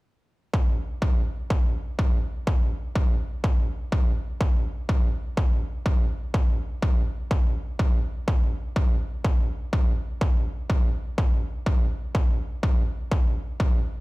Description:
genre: techno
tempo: 124 BPM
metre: 4/4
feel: straight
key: none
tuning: none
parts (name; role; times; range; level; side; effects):
- electronic kick drum; drums; 0.5-13.7 s; none; -22 LUFS; equal; distortion, overdrive
room: little or no reverb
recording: played on a big sound system in a bare room, large studio reverb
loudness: -22 LUFS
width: side -21 dB against mid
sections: 0.5-14.0 A section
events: none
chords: none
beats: | 0.54 1.02 1.50 1.99 | 2.47 2.95 3.44 3.92 | 4.41 4.89 5.37 5.86 | 6.34 6.83 7.31 7.79 | 8.28 8.76 9.24 9.73 | 10.21 10.70 11.18 11.66 | 12.15 12.63 13.12 13.60

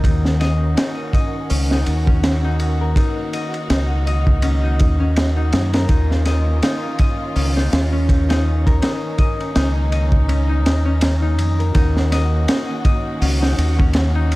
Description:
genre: trip hop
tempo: 82 BPM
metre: 4/4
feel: swing 56% on 16ths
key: Eb minor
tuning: A4 = 440 Hz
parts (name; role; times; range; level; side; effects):
- warm studio string section; sustained chords; 0.0-14.4 s; Eb3 to Gb4; -28 LUFS; right 1 dB; none
- concert harp; arpeggios; 0.0-14.4 s; Db4 to Eb5; -25 LUFS; left 4 dB; tape echo
- deep dub fingered electric bass; bass; 0.0-14.4 s; Db2 to Gb2; -17 LUFS; equal; none
- crunchy breakbeat drum kit; drums; 0.0-14.4 s; hi-hat, kick drum, ride cymbal, snare drum; -19 LUFS; equal; none
- wind-like tuned noise texture; texture; 0.0-11.8 s; Bb4; -39 LUFS; right 4 dB; none
room: studio ambience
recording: echo-heavy mix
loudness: -15 LUFS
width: side -19 dB against mid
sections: 0.0-11.7 A section; 11.7-14.4 B section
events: none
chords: 0.0 Ebm7; 5.9 Bbm; 11.7 Ebm7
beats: | 0.04 0.77 1.50 2.24 | 2.97 3.70 4.43 5.16 | 5.89 6.63 7.36 8.09 | 8.82 9.55 10.29 11.02 | 11.75 12.48 13.21 13.94

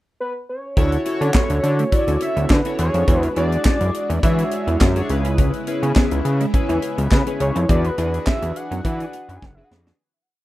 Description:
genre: early-eighties boogie funk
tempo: 104 BPM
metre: 4/4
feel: straight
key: unclear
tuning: A4 = 440 Hz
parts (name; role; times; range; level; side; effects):
- fat analog lead; melody; 0.2-9.7 s; B4 to G#5; -26 LUFS; right 1 dB; none
- chorused polysynth; accompaniment; 0.8-9.9 s; C#4 to D5; -26 LUFS; left 2 dB; none
- string machine, full ensemble; sustained chords; 0.8-10.0 s; C#3 to G#4; -31 LUFS; equal; none
- clean electric guitar; riff; 0.8-10.0 s; G#3 to E4; -30 LUFS; right 3 dB; ensemble chorus
- fat analog bass; bass; 0.8-9.9 s; F#1 to E3; -20 LUFS; equal; none
- tight funk drum kit; drums; 0.8-10.0 s; handclaps, hi-hat, kick drum, snare drum; -19 LUFS; equal; none
room: moderate small room reverb, RT60 0.5 s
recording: rough home demo mix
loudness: -17 LUFS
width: side -16 dB against mid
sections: 0.0-0.8 pickup bar; 0.8-10.0 verse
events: fade-out 7.7-10.0; drum fill 9.4-10.0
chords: 0.0 N.C.; 0.8 Dmaj9; 2.8 E13; 5.1 C#m7; 7.7 E9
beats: 0.19 | 0.77 1.35 1.92 2.50 | 3.08 3.65 4.23 4.81 | 5.38 5.96 6.54 7.12 | 7.69 8.27 8.85 9.42

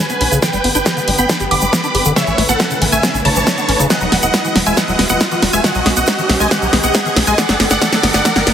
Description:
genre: uplifting trance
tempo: 138 BPM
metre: 4/4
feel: straight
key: unclear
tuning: A4 = 444 Hz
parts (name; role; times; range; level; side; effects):
- big supersaw lead; melody; 0.0-8.5 s; A4 to D6; -19 LUFS; right 1 dB; sidechain pumping, low-pass filter, tape echo
- wide unison pluck; second line; 0.0-8.5 s; E5 to D6; -22 LUFS; right 2 dB; phaser, sidechain pumping
- muted studio string section; sustained chords; 0.0-8.5 s; C#3 to B4; -23 LUFS; equal; sidechain pumping
- riser; sound effects; 0.3-8.5 s; none; -23 LUFS; equal; none
- liquid acid bass; arpeggios; 0.1-8.5 s; C#3 to G4; -20 LUFS; left 2 dB; analog chorus, sidechain pumping, tape echo
- big-room dance drum kit; drums; 0.1-8.5 s; hi-hat, snare drum; -16 LUFS; equal; none
- tube shaker; percussion; 0.1-8.4 s; none; -24 LUFS; right 3 dB; none
- tight sequencer bass; bass; 0.2-8.5 s; E1 to B1; -22 LUFS; equal; sidechain pumping
- electronic kick drum; drums; 0.4-8.3 s; none; -18 LUFS; equal; high-pass filter on kick
room: moderate lush hall reverb, RT60 2.2 s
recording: heavily compressed radio sound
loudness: -12 LUFS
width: side -9 dB against mid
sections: 0.0-8.5 A section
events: build-up 0.0-8.5; drum fill 0.0-8.5; filter sweep on acid bass 0.0-8.5; riser 0.3-8.5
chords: 0.4 G; 2.2 Aadd9; 3.9 Eadd9; 5.6 Badd9; 7.4 G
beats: | 0.42 0.86 1.29 1.73 | 2.16 2.60 3.03 3.47 | 3.90 4.34 4.77 5.21 | 5.64 6.08 6.51 6.95 | 7.38 7.82 8.25

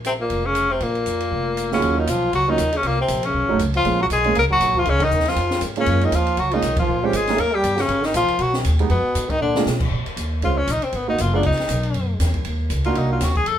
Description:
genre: jazz, small-group swing and bop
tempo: 237 BPM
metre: 4/4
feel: swing 57% on 8ths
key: Eb minor, Bb minor from 9.9 s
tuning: A4 = 440 Hz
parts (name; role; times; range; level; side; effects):
- upright bass; bass; 0.0-13.6 s; F1 to Cb3; -23 LUFS; equal; none
- open jazz drum kit; drums; 0.0-13.5 s; crash cymbal, hi-hat, kick drum, ride cymbal, snare drum; -28 LUFS; right 1 dB; none
- breathy tenor saxophone; melody; 0.1-13.6 s; Bb3 to Bb4; -21 LUFS; left 2 dB; none
- bright trombone; second line; 0.1-9.6 s; Bb2 to Bb3; -26 LUFS; right 3 dB; none
- warm concert grand piano; accompaniment; 1.7-13.2 s; Eb2 to Ab4; -24 LUFS; right 6 dB; none
room: wet studio reverb, RT60 0.6 s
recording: band playing live in one room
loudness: -18 LUFS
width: side -10 dB against mid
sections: 0.0-1.8 A section; 1.8-9.9 B section; 9.9-13.6 C section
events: band accent 5.0, 6.8; drum fill 9.4; tenor saxophone solo 9.9-13.6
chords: 0.0 Bbm; 1.8 Ebm7; 2.8 Bbmadd9; 3.3 B9; 3.8 Bbm7; 4.9 Db; 5.9 Gbmaj7; 6.9 Bbm7; 7.4 Eb; 7.9 Abm; 8.9 Fdim; 9.4 Bb7; 9.9 Bbm7; 10.9 Abm7; 11.4 Badd9; 11.9 Gb5; 13.0 Cm7b5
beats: 0.05 0.30 0.55 | 0.81 1.06 1.31 1.57 | 1.82 2.08 2.33 2.58 | 2.83 3.09 3.34 3.59 | 3.85 4.10 4.35 4.60 | 4.86 5.11 5.36 5.62 | 5.87 6.12 6.37 6.63 | 6.88 7.13 7.38 7.64 | 7.89 8.14 8.40 8.65 | 8.90 9.15 9.41 9.66 | 9.91 10.17 10.42 10.67 | 10.93 11.18 11.43 11.69 | 11.94 12.19 12.45 12.70 | 12.95 13.21 13.46

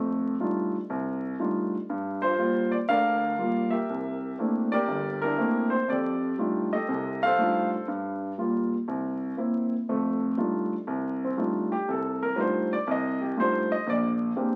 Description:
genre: solo jazz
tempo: 120 BPM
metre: 4/4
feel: swing 66% on 8ths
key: F mixolydian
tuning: A4 = 440 Hz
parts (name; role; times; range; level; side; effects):
- warm grand piano; solo; 0.0-14.6 s; G1 to F5; -27 LUFS; equal; none
room: moderate large studio reverb, RT60 1.0 s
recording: very old 78 rpm record, vinyl crackle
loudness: -27 LUFS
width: mono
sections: 0.0-9.9 A section; 9.9-14.6 B section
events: grand piano solo 9.9-14.6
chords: 0.0 F13; 1.9 Gm7; 3.9 C13; 5.9 F13; 7.9 Gm7; 8.9 C7; 9.9 F13; 13.9 Bb13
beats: 0.40 0.90 1.40 | 1.89 2.39 2.89 3.39 | 3.89 4.38 4.88 5.38 | 5.88 6.38 6.88 7.38 | 7.88 8.38 8.88 9.38 | 9.88 10.38 10.87 11.37 | 11.87 12.37 12.87 13.37 | 13.87 14.37

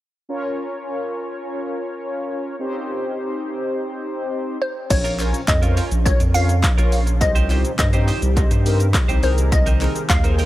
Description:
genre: dance-pop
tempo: 104 BPM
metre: 4/4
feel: straight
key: Bb dorian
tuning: A4 = 441 Hz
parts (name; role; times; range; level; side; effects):
- mellow synth brass; accompaniment; 0.3-10.5 s; C4 to Db5; -26 LUFS; left 1 dB; chorus, sidechain pumping, dub echo
- glassy wavetable pluck; melody; 4.6-10.5 s; C5 to F5; -25 LUFS; left 1 dB; chorus, dub echo
- glassy FM pad; sustained chords; 5.4-10.5 s; Bb2 to G4; -31 LUFS; left 1 dB; ensemble chorus, built-in reverb, tremolo, sidechain pumping
- twelve-string electric guitar; riff; 4.9-10.5 s; C4 to C5; -30 LUFS; right 5 dB; wide subtle chorus, dub echo
- saturated sub bass; bass; 4.9-10.4 s; Bb1 to G2; -19 LUFS; equal; sidechain pumping
- punchy analog drum machine; drums; 4.9-10.5 s; crash cymbal, handclaps, hi-hat, kick drum, shaker; -19 LUFS; equal; none
- group handclap; percussion; 5.2-10.2 s; none; -36 LUFS; left 2 dB; none
room: little or no reverb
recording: echo-heavy mix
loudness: -18 LUFS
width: side -15 dB against mid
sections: 0.3-4.9 A section; 4.9-10.5 B section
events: none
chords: 0.3 Bbm; 2.6 Cm; 4.6 N.C.; 4.9 Bbm; 7.2 Cm; 9.2 Abadd9/C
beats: | 0.29 0.86 1.44 2.02 | 2.60 3.17 3.75 4.33 | 4.90 5.48 6.06 6.63 | 7.21 7.79 8.37 8.94 | 9.52 10.10

